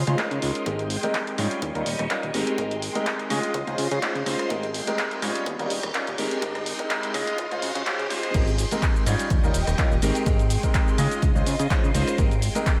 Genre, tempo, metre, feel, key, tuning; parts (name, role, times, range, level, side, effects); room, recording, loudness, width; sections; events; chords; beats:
filtered disco house; 125 BPM; 4/4; swing 54% on 16ths; Ab major; A4 = 442 Hz
phased string machine; sustained chords; 0.0-12.8 s; Ab3 to Db6; -35 LUFS; equal; ensemble chorus, phaser, sidechain pumping, low-pass filter
fat analog bass; bass; 0.0-12.5 s; Eb1 to Db3; -30 LUFS; equal; tube saturation, sidechain pumping, low-pass filter
clear grand piano; accompaniment; 0.1-12.8 s; G3 to Eb5; -30 LUFS; equal; phaser, sidechain pumping, low-pass filter
punchy analog drum machine; drums; 0.1-12.8 s; crash cymbal, handclaps, hi-hat, rim click, shaker; -33 LUFS; equal; sidechain pumping on hats, high-pass filter on hats, high-pass filter on snare, sidechain pumping on cymbals, high-pass filter on cymbals, sidechain pumping on perc, high-pass filter on perc, high-pass filter on room
electronic kick drum; drums; 0.2-12.8 s; -27 LUFS; equal; high-pass filter on kick, high-pass filter on room
riser; sound effects; 3.2-8.3 s; -40 LUFS; equal
wet plate reverb, RT60 1.6 s; dreamy mix soaked in reverb, high-pass filter; -24 LUFS; mono
0.0-8.3 A section; 8.3-12.8 B section
build-up 0.0-8.3; filter sweep 0.0-8.3; riser 3.2-8.3; drop 8.3-12.8
0.0 Dbmaj9; 0.7 Abmaj7; 1.6 Eb7; 2.3 Abmaj7; 3.3 Dbmaj9; 4.5 Abmaj7; 5.5 Eb7; 6.2 Abmaj7; 7.1 Dbmaj9; 8.3 Abmaj7; 9.3 Eb7; 10.0 Abmaj7; 11.0 Dbmaj9; 12.2 Abmaj7
0.18 | 0.66 1.14 1.62 2.10 | 2.58 3.06 3.54 4.02 | 4.50 4.98 5.46 5.94 | 6.42 6.90 7.38 7.86 | 8.34 8.82 9.30 9.78 | 10.26 10.74 11.22 11.70 | 12.18 12.66